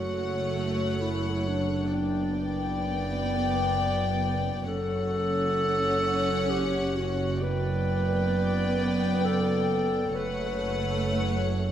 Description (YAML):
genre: cinematic, suspense film score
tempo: free time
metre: none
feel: none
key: F# phrygian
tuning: A4 = 440 Hz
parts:
  - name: rich studio violin section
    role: melody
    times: 0.0-11.7 s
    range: F#5 to G5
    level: -34 LUFS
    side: left 7 dB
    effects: none
  - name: mellow clarinet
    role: second line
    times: 0.0-11.7 s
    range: D4 to B4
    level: -30 LUFS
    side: left 1 dB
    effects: none
  - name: warm symphonic violin section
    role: second line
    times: 0.0-11.7 s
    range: C#5 to D5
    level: -34 LUFS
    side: left 3 dB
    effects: none
  - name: dark symphonic viola section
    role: accompaniment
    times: 0.0-11.7 s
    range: A3 to C#4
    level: -33 LUFS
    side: right 2 dB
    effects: none
  - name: warm symphonic cello section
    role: bass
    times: 0.0-11.7 s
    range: F#2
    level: -32 LUFS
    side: right 2 dB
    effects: none
  - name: warm symphonic double bass section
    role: bass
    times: 0.0-11.7 s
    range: F#1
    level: -32 LUFS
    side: right 3 dB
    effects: none
room: wet scoring stage reverb, RT60 1.5 s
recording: none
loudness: -25 LUFS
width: side -10 dB against mid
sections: 0.0-11.7 A section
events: none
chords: 0.0 F#m; 1.9 G/F#; 4.7 F#m; 7.4 G/F#; 10.2 F#m